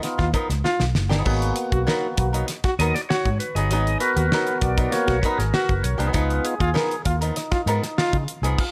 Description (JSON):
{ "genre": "funk", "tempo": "98 BPM", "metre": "4/4", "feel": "straight", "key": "G# dorian", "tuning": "A4 = 444 Hz", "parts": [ { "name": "archtop guitar, miked and amplified", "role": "accompaniment", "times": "0.0-8.6 s", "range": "E#3 to A#4", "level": "-30 LUFS", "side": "equal", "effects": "wah" }, { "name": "percussive tonewheel organ", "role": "stabs", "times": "0.0-8.7 s", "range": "A#3 to D#5", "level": "-28 LUFS", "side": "equal", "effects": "slow rotary speaker" }, { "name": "damped 70s drum kit", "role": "drums", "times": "0.0-8.7 s", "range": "crash cymbal, hi-hat, kick drum, snare drum, splash cymbal", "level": "-28 LUFS", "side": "equal", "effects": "none" }, { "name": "warm trombone", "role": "second line", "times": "0.2-8.2 s", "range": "E#4 to F#4", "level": "-30 LUFS", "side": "equal", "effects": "none" }, { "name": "vintage muted fingered electric bass", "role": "bass", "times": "0.2-8.5 s", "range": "F#1 to C#3", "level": "-26 LUFS", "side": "equal", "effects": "none" } ], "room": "light reverb, small room ambience", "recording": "none", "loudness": "-22 LUFS", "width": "mono", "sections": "0.0-8.7 A section", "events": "tonewheel organ solo 0.0-8.7; drum fill 0.7-1.3", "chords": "0.0 C#9 (rootless); 1.3 G#m7; 6.2 C#9", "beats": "0.05 0.66 | 1.27 1.88 2.49 3.10 | 3.71 4.32 4.93 5.54 | 6.15 6.76 7.37 7.98 | 8.59" }